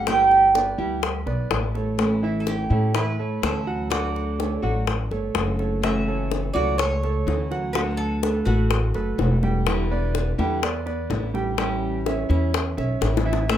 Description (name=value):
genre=latin, Cuban son and guajira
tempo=125 BPM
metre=4/4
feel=straight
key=D major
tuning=A4 = 435 Hz
part: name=Cuban tres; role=melody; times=0.0-9.4, 13.5-13.6 s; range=F#4 to G5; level=-23 LUFS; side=right 3 dB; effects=none
part: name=nylon-string guitar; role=accompaniment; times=0.0-13.6 s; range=B2 to F#4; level=-28 LUFS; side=left 1 dB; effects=none
part: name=warm grand piano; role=arpeggios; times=0.0-13.6 s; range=E3 to G5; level=-28 LUFS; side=right 4 dB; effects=none
part: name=upright bass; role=bass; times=0.0-13.6 s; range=E1 to A2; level=-25 LUFS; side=equal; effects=none
part: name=bongos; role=percussion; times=0.1-13.6 s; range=none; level=-27 LUFS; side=left 7 dB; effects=none
room=moderate studio reverb, RT60 0.5 s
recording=none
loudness=-20 LUFS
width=side -10 dB against mid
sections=0.0-5.8 A section; 5.8-13.6 B section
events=drum fill 13.0-13.5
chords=0.1 G6; 2.0 A; 3.9 Dmaj7; 5.8 F#m7; 7.8 D6; 9.7 Em7; 11.6 A7